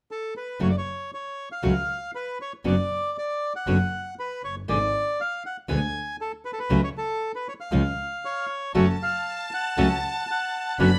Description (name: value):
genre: tango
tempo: 118 BPM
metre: 4/4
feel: rubato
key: F# harmonic minor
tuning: A4 = 441 Hz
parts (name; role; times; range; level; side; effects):
- bandoneon; melody; 0.1-10.9 s; A4 to G#5; -31 LUFS; equal; none
- nylon-string guitar; accompaniment; 0.6-10.9 s; B2 to G#4; -26 LUFS; equal; none
- clear double bass; bass; 0.6-11.0 s; F#1 to D2; -29 LUFS; equal; none
- bandoneon; stabs; 8.7-11.0 s; C#4 to B4; -33 LUFS; equal; none
- warm studio violin section; second line; 8.8-11.0 s; A5 to B5; -33 LUFS; equal; none
room: moderate studio reverb, RT60 0.7 s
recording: none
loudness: -27 LUFS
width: mono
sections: 0.6-8.8 A section; 8.8-11.0 B section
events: none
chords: 0.0 N.C.; 0.6 F#m; 2.7 Bm/F#; 4.7 G#dim; 6.7 F#m/C#; 7.7 C#; 8.8 F#m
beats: 0.09 | 0.60 1.12 1.63 2.14 | 2.65 3.16 3.67 4.18 | 4.68 5.19 5.69 6.20 | 6.70 7.21 7.72 8.23 | 8.75 9.26 9.78 10.29 | 10.79